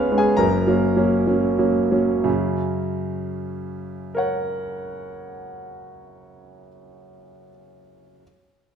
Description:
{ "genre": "classical, romantic character piece for solo piano", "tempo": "59-76 BPM", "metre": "2/4", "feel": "rubato", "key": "F# major", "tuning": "A4 = 440 Hz", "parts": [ { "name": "clear concert grand piano", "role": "solo", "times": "0.0-8.2 s", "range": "F#1 to E#6", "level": "-20 LUFS", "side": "right 1 dB", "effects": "none" } ], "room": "wet recital hall reverb, RT60 1.4 s", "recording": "none", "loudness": "-19 LUFS", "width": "side -8 dB against mid", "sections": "0.0-2.3 A section; 2.3-6.0 B section", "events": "slowing down 0.0-2.3", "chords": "0.4 F#" }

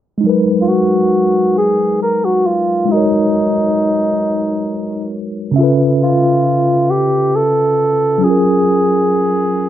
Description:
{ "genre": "R&B", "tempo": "45 BPM (dotted quarters)", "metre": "6/8", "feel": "straight", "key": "G# dorian", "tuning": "A4 = 440 Hz", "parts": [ { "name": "tine electric piano", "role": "accompaniment", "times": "0.2-9.7 s", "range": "C#3 to E5", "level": "-15 LUFS", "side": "equal", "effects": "medium stereo tremolo" }, { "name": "breathy tenor saxophone", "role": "melody", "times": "0.6-9.7 s", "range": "D#4 to A#4", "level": "-14 LUFS", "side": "equal", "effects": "slapback echo" } ], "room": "moderate studio reverb, RT60 0.5 s", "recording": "dry, close 1970s-style studio recording, low-pass filter", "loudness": "-12 LUFS", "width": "side -11 dB against mid", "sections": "0.2-9.7 A section", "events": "filter sweep 0.2-9.7", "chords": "0.2 G#m9; 5.6 C#7alt; 8.2 F#maj9" }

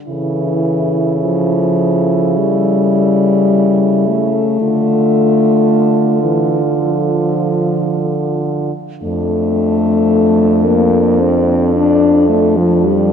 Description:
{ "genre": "classical, lyrical piece for horn quartet", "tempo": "54 BPM", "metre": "4/4", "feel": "rubato", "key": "D minor", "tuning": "A4 = 440 Hz", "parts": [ { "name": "mellow French horn", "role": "melody", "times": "0.1-13.1 s", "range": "A4", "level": "-23 LUFS", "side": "left 8 dB", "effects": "none" }, { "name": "warm French horn", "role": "second line", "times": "0.1-13.1 s", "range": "D4 to F4", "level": "-20 LUFS", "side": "right 9 dB", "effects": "none" }, { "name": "dark French horn", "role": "accompaniment", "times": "0.1-13.1 s", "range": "E3 to D4", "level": "-14 LUFS", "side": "left 2 dB", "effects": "none" }, { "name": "mellow French horn", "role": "bass", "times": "0.1-13.1 s", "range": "F2 to D3", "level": "-19 LUFS", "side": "right 2 dB", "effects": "none" } ], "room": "wet concert hall reverb, RT60 2.0 s", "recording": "dark, warm production", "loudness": "-11 LUFS", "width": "side -7 dB against mid", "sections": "0.0-13.1 A section", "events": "none", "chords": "0.1 A7/C#; 4.6 Dm; 9.0 Dm/F" }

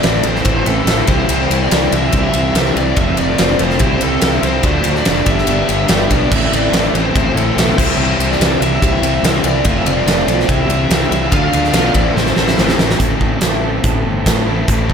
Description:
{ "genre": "classic rock", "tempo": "144 BPM", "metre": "4/4", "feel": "straight", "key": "A minor", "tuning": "A4 = 443 Hz", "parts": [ { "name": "bluesy overdriven lead guitar", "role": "melody", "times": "0.0-12.8 s", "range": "A4 to F5", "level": "-20 LUFS", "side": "equal", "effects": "distortion" }, { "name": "bright grand piano", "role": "accompaniment", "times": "0.0-12.9 s", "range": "C4 to F5", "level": "-29 LUFS", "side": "left 3 dB", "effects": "none" }, { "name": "fingerpicked plugged-in twelve-string acoustic guitar", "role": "accompaniment", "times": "0.0-14.9 s", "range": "F2 to G4", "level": "-28 LUFS", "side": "left 2 dB", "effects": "none" }, { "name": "distorted electric guitar", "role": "riff", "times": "0.0-14.9 s", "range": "G2 to F4", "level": "-21 LUFS", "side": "left 9 dB", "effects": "distortion, slapback echo" }, { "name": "fuzz guitar", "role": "riff", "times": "0.0-13.0 s", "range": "G2 to F4", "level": "-23 LUFS", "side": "equal", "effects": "none" }, { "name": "raw garage guitar", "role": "riff", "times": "0.0-14.9 s", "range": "G2 to A4", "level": "-23 LUFS", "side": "right 9 dB", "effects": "overdrive, slapback echo" }, { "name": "huge arena drum kit", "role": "drums", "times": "0.0-14.9 s", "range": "crash cymbal, hi-hat, kick drum, ride cymbal, snare drum", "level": "-16 LUFS", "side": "equal", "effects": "none" }, { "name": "fuzz fingered electric bass", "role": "bass", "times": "0.1-14.9 s", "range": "F1 to A2", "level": "-19 LUFS", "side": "equal", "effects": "overdrive" } ], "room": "moderate lush hall reverb, RT60 1.8 s, studio ambience", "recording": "big arena sound", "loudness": "-12 LUFS", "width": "side -7 dB against mid", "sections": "0.0-13.0 A section; 13.0-14.9 B section", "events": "drum fill 12.2-13.0", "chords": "0.0 Am; 1.1 C; 3.0 F; 3.8 C; 4.6 Dm; 5.3 G; 6.3 Am; 7.8 C; 9.7 F; 10.5 C; 11.3 Dm; 12.0 Am" }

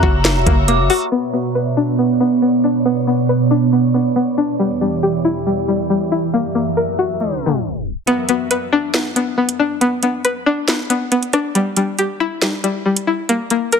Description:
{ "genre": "hip hop, drill", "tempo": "138 BPM", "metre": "4/4", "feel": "half-time", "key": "B harmonic minor", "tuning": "A4 = 439 Hz", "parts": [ { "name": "dark detuned synth bell", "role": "second line", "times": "0.0-1.1 s", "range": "A#5 to D6", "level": "-23 LUFS", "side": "right 2 dB", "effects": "chorus, phaser, digital delay" }, { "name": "glassy FM pad", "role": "sustained chords", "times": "0.0-8.1 s", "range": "E2 to A#5", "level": "-18 LUFS", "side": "right 3 dB", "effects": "ensemble chorus, built-in reverb" }, { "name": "string-like resonator pluck", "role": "arpeggios", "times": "0.0-13.8 s", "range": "G3 to B4", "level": "-18 LUFS", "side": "left 3 dB", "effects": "chorus, low-pass filter, digital delay" }, { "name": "growling 808-style bass", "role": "bass", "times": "0.0-0.9 s", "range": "E1 to F#1", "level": "-17 LUFS", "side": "equal", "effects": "none" }, { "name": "drill drum kit", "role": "drums", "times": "0.0-1.0, 8.1-13.8 s", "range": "hi-hat, kick drum, rim click, snare drum", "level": "-18 LUFS", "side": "right 1 dB", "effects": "none" } ], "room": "light reverb", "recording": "dense, heavily limited modern master, low-pass filter, tape stop", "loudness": "-15 LUFS", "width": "side -6 dB against mid", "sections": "0.0-1.1 A section; 1.1-8.1 B section; 8.1-13.8 C section", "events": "filter sweep 1.1-8.1; tape stop 7.2-8.1; kick muted 8.1-13.8", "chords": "0.0 F#7; 1.1 Bmadd9; 4.6 Em7; 6.3 F#7; 8.1 Bm; 11.6 Em; 13.3 N.C." }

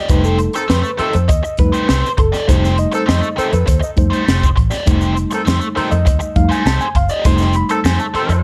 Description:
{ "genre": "funk", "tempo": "101 BPM", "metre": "4/4", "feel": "straight", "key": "F mixolydian", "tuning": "A4 = 440 Hz", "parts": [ { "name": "biting overdriven guitar", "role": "accompaniment", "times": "0.0-8.3 s", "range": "A3 to D5", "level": "-24 LUFS", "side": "equal", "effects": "wah" }, { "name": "reed electric piano", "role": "stabs", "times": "0.0-8.4 s", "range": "G3 to C6", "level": "-22 LUFS", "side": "equal", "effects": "fast tremolo" }, { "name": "vintage muted fingered electric bass", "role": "bass", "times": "0.1-8.4 s", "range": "F1 to F2", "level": "-19 LUFS", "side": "equal", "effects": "none" }, { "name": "crisp fusion drum kit", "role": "drums", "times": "0.1-8.4 s", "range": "hi-hat, kick drum, snare drum", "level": "-19 LUFS", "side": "equal", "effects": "none" }, { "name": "tube shaker", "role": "percussion", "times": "0.1-8.4 s", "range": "none", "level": "-39 LUFS", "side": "equal", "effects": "none" }, { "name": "mellow horn section", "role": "second line", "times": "0.5-8.4 s", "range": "Eb3 to A4", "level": "-25 LUFS", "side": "equal", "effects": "tape echo" } ], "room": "light reverb", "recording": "dark, warm production", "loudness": "-15 LUFS", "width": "mono", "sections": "0.0-8.4 A section", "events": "reed electric piano solo 0.0-8.4", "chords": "0.0 F9" }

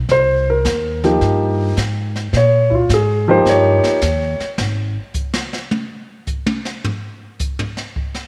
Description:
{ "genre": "jazz piano trio", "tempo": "107 BPM", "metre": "4/4", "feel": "swing 68% on 8ths", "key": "unclear", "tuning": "A4 = 444 Hz", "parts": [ { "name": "upright bass", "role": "bass", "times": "0.0-5.0 s", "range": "Ab1 to Bb2", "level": "-21 LUFS", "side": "equal", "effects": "none" }, { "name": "dark concert grand piano", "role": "melody", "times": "0.1-4.5 s", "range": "F3 to Db5", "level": "-17 LUFS", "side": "equal", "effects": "slapback echo" }, { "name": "jazz brush drum kit", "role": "drums", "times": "0.1-8.3 s", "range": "brushed snare drum, hi-hat, kick drum, snare drum, toms", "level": "-26 LUFS", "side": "equal", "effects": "none" } ], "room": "moderate echo chamber reverb, RT60 2.1 s", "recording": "none", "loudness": "-17 LUFS", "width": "mono", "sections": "0.0-8.3 A section", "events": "grand piano solo 0.0-8.3; drum solo 4.6-8.3", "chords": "0.1 Cm7; 2.3 Bb5; 3.5 Eb9; 4.6 N.C." }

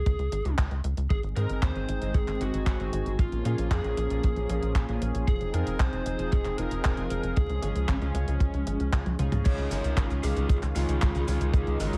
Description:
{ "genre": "italo disco", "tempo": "115 BPM", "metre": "4/4", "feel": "straight", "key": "Db major", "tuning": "A4 = 440 Hz", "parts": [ { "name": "lead guitar through a small cranked amp", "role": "melody", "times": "0.0-12.0 s", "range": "Db4 to Db5", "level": "-37 LUFS", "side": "equal", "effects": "overdrive, delay" }, { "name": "tight sequencer bass", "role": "bass", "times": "0.0-12.0 s", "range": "F1 to Bb2", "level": "-32 LUFS", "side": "equal", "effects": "none" }, { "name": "clean 12-bit digital drum machine", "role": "drums", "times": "0.1-12.0 s", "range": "cabasa, crash cymbal, handclaps, hi-hat, toms", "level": "-38 LUFS", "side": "equal", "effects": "overdrive, gated reverb" }, { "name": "kick drum", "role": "drums", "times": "0.1-11.6 s", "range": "none", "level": "-28 LUFS", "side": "equal", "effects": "none" }, { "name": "warm analog pad", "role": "sustained chords", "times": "1.1-12.0 s", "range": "Eb3 to Ab4", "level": "-37 LUFS", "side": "equal", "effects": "chorus, vintage 12-bit sampler grit" }, { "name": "chorused polysynth", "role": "stabs", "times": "1.4-12.0 s", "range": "Ab2 to Ab4", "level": "-39 LUFS", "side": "equal", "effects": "none" } ], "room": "little or no reverb", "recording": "vinyl crackle", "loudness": "-28 LUFS", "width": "mono", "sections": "0.0-9.5 A section; 9.5-12.0 B section", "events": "drum fill 9.1-9.5", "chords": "0.0 Db5; 1.1 Ab; 3.2 Bbm7; 5.3 Fm7; 7.4 Db" }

